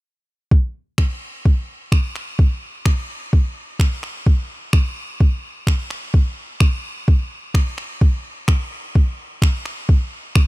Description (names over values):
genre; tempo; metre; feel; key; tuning
pop; 128 BPM; 4/4; straight; none; none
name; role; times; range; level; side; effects
smooth R&B drum kit; drums; 0.5-10.5 s; finger snaps, kick drum; -17 LUFS; equal; none
room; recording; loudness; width
little or no reverb; none; -17 LUFS; side -20 dB against mid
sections
0.5-10.5 A section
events
none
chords
none